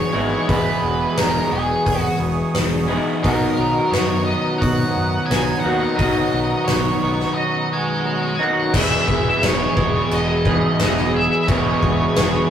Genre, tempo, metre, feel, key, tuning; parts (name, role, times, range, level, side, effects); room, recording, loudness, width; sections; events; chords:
rock, shoegaze and dream pop; 87 BPM; 4/4; straight; E lydian; A4 = 439 Hz
octave-fuzz lead guitar; melody; 0.0-12.5 s; G#4 to G#5; -23 LUFS; right 1 dB; distortion
warm analog pad; sustained chords; 0.0-12.5 s; G#4 to D#6; -27 LUFS; right 1 dB; chorus
twangy electric guitar; arpeggios; 0.0-12.5 s; E3 to G#4; -33 LUFS; right 4 dB
electric guitar through a small old amp; riff; 0.0-12.5 s; E2 to G#4; -24 LUFS; equal
overdriven semi-hollow guitar; riff; 0.0-12.5 s; B2 to E4; -24 LUFS; left 2 dB
raw garage guitar; riff; 0.0-12.5 s; E2 to B3; -29 LUFS; right 2 dB
growling picked electric bass; bass; 0.1-12.4 s; E1 to B2; -25 LUFS; equal; overdrive
huge arena drum kit; drums; 0.5-12.3 s; crash cymbal, hi-hat, kick drum, snare drum; -22 LUFS; left 1 dB
wet booth ambience, RT60 0.2 s; rough rehearsal-room recording, tube saturation; -16 LUFS; side -9 dB against mid
0.0-8.7 A section; 8.7-12.5 B section
0.0 Emaj7; 3.2 Bmaj7; 8.7 Emaj7